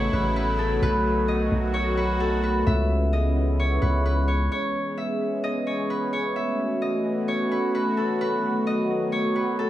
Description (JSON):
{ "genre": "hip hop, atmospheric cloud-rap", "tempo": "130 BPM", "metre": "4/4", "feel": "half-time", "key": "unclear", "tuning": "A4 = 440 Hz", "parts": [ { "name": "concert harp", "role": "melody", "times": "0.0-9.7 s", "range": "A4 to E5", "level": "-27 LUFS", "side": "equal", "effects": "analog delay" }, { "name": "sweeping resonant pad", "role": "sustained chords", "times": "0.0-9.7 s", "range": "C#3 to G#4", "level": "-25 LUFS", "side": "equal", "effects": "chorus" }, { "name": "long sustained 808-style bass", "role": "bass", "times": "0.0-4.5 s", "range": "A1 to C#2", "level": "-24 LUFS", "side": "equal", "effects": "none" } ], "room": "moderate spring reverb, RT60 1.2 s, small room ambience", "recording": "echo-heavy mix", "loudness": "-22 LUFS", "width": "side -13 dB against mid", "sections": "0.0-4.5 A section; 4.5-9.7 B section", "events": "none", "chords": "0.0 A69; 0.8 B7; 2.7 C#m9; 4.5 E6; 6.4 A69; 8.2 B7" }